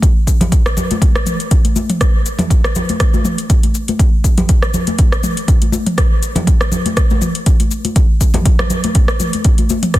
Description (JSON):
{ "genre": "house", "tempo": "121 BPM", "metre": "4/4", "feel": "swing 55% on 16ths", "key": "none", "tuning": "none", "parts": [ { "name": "afro-pop drum kit", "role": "drums", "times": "0.0-10.0 s", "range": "hi-hat, rim click, shaker, toms", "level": "-19 LUFS", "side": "equal", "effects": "soft clipping on snare" }, { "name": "electronic kick drum", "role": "drums", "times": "0.0-10.0 s", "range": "none", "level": "-12 LUFS", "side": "equal", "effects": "none" }, { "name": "congas", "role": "percussion", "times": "0.4-9.8 s", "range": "none", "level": "-20 LUFS", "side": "left 2 dB", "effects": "none" } ], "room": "digital ambience", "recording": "dense, heavily limited modern master", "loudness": "-12 LUFS", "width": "side -16 dB against mid", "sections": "0.0-10.0 A section", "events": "none", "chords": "none", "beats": "| 0.03 0.52 1.02 1.51 | 2.01 2.50 3.00 3.50 | 3.99 4.49 4.99 5.48 | 5.98 6.47 6.97 7.46 | 7.96 8.46 8.95 9.45 | 9.94" }